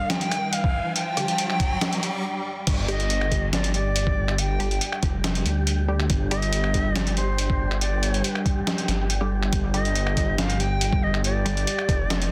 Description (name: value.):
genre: deep dubstep.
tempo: 140 BPM.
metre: 4/4.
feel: half-time.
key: unclear.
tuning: A4 = 440 Hz.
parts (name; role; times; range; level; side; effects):
bright reedy shakuhachi; melody; 0.0-12.3 s; C5 to G5; -32 LUFS; equal; vintage 12-bit sampler grit, dub echo.
deep dark ambient pad; sustained chords; 0.0-12.3 s; G3 to G4; -36 LUFS; equal; chorus, built-in reverb.
riser; sound effects; 0.0-2.2 s; none; -33 LUFS; equal; none.
trip hop sampler-style drum kit; drums; 0.1-12.3 s; crash cymbal, finger snaps, hi-hat, snare drum; -30 LUFS; equal; overdrive.
electronic kick drum; drums; 0.6-12.0 s; none; -26 LUFS; equal; overdrive.
filtered dub chord stab; stabs; 1.2-6.4, 9.2-11.5 s; D3 to G4; -36 LUFS; equal; phaser, dub echo.
dark detuned saw bass; bass; 2.7-12.3 s; F1 to D2; -27 LUFS; equal; tube saturation.
wind-like tuned noise texture; texture; 3.5-12.3 s; G4; -38 LUFS; equal; built-in reverb.
room: light reverb, digital ambience.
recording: dense, heavily limited modern master.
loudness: -24 LUFS.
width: mono.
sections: 0.0-2.7 A section; 2.7-12.3 B section.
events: build-up 0.0-2.7; riser 0.0-2.2; filter sweep on synth stab 0.0-2.7; break 2.2-2.7; drop 2.7-12.3.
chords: 0.0 G5.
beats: 0.10 0.53 | 0.96 1.39 1.81 2.24 | 2.67 3.10 3.53 3.96 | 4.38 4.81 5.24 5.67 | 6.10 6.53 6.96 7.38 | 7.81 8.24 8.67 9.10 | 9.53 9.96 10.38 10.81 | 11.24 11.67 12.10.